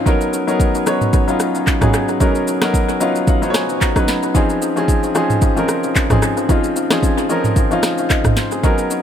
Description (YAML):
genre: amapiano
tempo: 112 BPM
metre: 4/4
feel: swing 55% on 16ths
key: unclear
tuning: A4 = 440 Hz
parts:
  - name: clear baby grand piano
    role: accompaniment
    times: 0.0-9.0 s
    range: F3 to Cb6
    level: -16 LUFS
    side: left 1 dB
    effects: analog delay
  - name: afro-pop drum kit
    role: drums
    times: 0.1-9.0 s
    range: handclaps, kick drum, rim click, shaker, snare drum, toms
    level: -17 LUFS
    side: right 1 dB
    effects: analog delay
room: light reverb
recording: echo-heavy mix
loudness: -14 LUFS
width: side -9 dB against mid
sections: 0.0-9.0 A section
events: grand piano fill 2.7-4.3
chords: 0.1 Cbmaj9; 4.3 Dbmaj9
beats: | 0.06 0.60 1.13 1.67 | 2.21 2.74 3.28 3.81 | 4.35 4.88 5.42 5.96 | 6.49 7.03 7.56 8.10 | 8.63